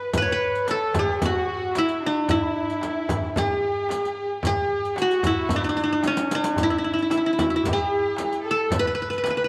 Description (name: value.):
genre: Arabic maqam ensemble.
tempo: 112 BPM.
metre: 4/4.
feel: straight.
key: E maqam rast.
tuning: A4 = 439 Hz.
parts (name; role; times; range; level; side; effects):
qanun; melody; 0.0-9.5 s; C#4 to C#5; -26 LUFS; equal; none.
breathy reedy low ney; second line; 0.0-9.3 s; C#4 to C#5; -32 LUFS; equal; none.
rich studio violin section; second line; 0.0-9.5 s; C#4 to B4; -34 LUFS; equal; none.
darbuka; percussion; 0.1-9.4 s; none; -36 LUFS; equal; none.
frame drum; percussion; 0.1-9.4 s; none; -33 LUFS; equal; none.
riq; percussion; 0.1-9.4 s; none; -37 LUFS; equal; none.
room: moderate echo chamber reverb, RT60 2.4 s.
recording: none.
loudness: -24 LUFS.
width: mono.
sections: 0.0-9.5 A section.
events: drum fill 6.0-6.6.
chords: none.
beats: | 0.15 0.69 1.22 1.76 | 2.29 2.83 3.36 3.90 | 4.43 4.97 5.50 6.04 | 6.58 7.11 7.65 8.18 | 8.72 9.25.